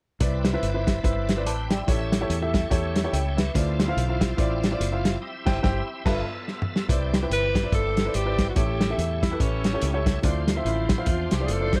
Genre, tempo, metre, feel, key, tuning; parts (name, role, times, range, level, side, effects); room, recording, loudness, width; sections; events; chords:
uptempo gospel; 144 BPM; 4/4; swing 59% on 8ths; C major; A4 = 440 Hz
warm concert grand piano; accompaniment; 0.2-11.8 s; G2 to D6; -31 LUFS; equal
bright tonewheel organ; sustained chords; 0.2-11.8 s; F3 to G5; -38 LUFS; equal; slow rotary speaker, overdrive, chorus vibrato
fingered electric bass; bass; 0.2-11.8 s; F#1 to E2; -30 LUFS; equal
warm soul drum kit; drums; 0.2-11.8 s; crash cymbal, hi-hat, kick drum, snare drum, toms; -27 LUFS; equal
breathy tenor saxophone; melody; 7.3-11.8 s; C#4 to C5; -31 LUFS; equal
little or no reverb; -24 LUFS; mono
0.2-6.9 A section; 6.9-11.8 B section
band accent 5.2-6.9; drum fill 6.5-6.9
0.2 Cmaj9; 1.9 A7; 3.6 Dm9; 5.2 C/G; 6.1 G13; 6.9 Cmaj9; 8.6 A7; 10.2 Dm9